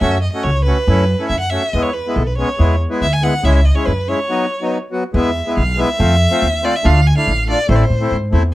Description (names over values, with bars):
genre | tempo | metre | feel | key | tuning
klezmer | 141 BPM | 2/4 | straight | E phrygian dominant from 5.2 s | A4 = 440 Hz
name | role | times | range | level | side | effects
rich violin | melody | 0.0-8.1 s | A4 to G#5 | -20 LUFS | equal | none
accordion | accompaniment | 0.0-8.4 s | F#3 to F#4 | -19 LUFS | left 1 dB | none
upright bass | bass | 0.0-8.5 s | A1 to A2 | -15 LUFS | equal | none
room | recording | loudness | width
light reverb | none | -13 LUFS | side -16 dB against mid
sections
0.0-5.2 A section; 5.2-8.5 B section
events
break 4.3-5.2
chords
0.0 F#m; 1.7 E; 3.5 C#m; 4.3 B; 5.2 E; 6.0 F; 6.8 Dm; 7.7 Am